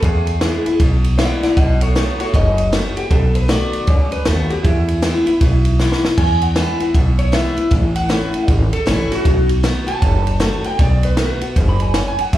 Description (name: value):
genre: rockabilly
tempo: 156 BPM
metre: 4/4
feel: swing 63% on 8ths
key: E major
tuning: A4 = 445 Hz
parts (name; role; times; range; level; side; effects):
- electric guitar through a small old amp; melody; 0.0-12.4 s; E4 to B5; -22 LUFS; right 1 dB; plate reverb, slapback echo, tape echo
- picked old ladder-braced acoustic guitar; accompaniment; 0.0-12.4 s; E2 to F#4; -21 LUFS; left 2 dB; plate reverb, slapback echo
- upright bass; bass; 0.0-12.4 s; F#1 to E2; -17 LUFS; equal; none
- compact cocktail drum kit; drums; 0.0-12.4 s; crash cymbal, kick drum, ride cymbal, snare drum; -19 LUFS; equal; none
room: light reverb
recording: live gig heard through the venue's PA, club reverb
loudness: -14 LUFS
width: side -14 dB against mid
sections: 0.0-6.2 A section; 6.2-12.4 A section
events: clean electric guitar solo 0.0-12.4; drum fill 5.8-6.2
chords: 0.0 E; 1.6 B7; 4.6 E; 7.7 A; 9.3 B7